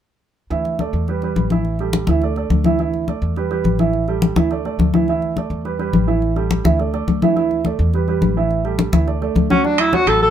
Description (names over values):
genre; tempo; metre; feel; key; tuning
Afro-Cuban jazz; 210 BPM; 4/4; straight; D major; A4 = 440 Hz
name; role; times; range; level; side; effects
warm upright piano; accompaniment; 0.5-10.3 s; E3 to F#5; -20 LUFS; right 7 dB; none
upright bass; bass; 0.5-10.3 s; A1 to E2; -21 LUFS; equal; none
congas; percussion; 0.5-10.3 s; none; -20 LUFS; left 5 dB; none
breathy alto saxophone; melody; 9.5-10.3 s; C#4 to A4; -14 LUFS; equal; none
timbales; percussion; 9.8-10.2 s; none; -21 LUFS; right 6 dB; none
room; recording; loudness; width
light reverb; minimal, uncompressed stereo recording; -16 LUFS; side -10 dB against mid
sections
0.5-9.6 A section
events
none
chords
0.5 Dsus2; 1.1 Em; 1.7 A5; 2.2 Dsus2; 3.4 Em; 3.9 A5; 4.5 Dsus2; 5.6 Em; 6.2 A5; 6.8 Dsus2; 7.9 Em; 8.5 A5; 9.1 D; 9.6 Dmaj7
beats
| 0.51 0.79 1.08 1.37 | 1.65 1.94 2.22 2.51 | 2.79 3.08 3.37 3.65 | 3.94 4.22 4.51 4.79 | 5.08 5.36 5.65 5.93 | 6.22 6.50 6.79 7.08 | 7.36 7.64 7.93 8.21 | 8.50 8.79 9.07 9.36 | 9.64 9.92 10.21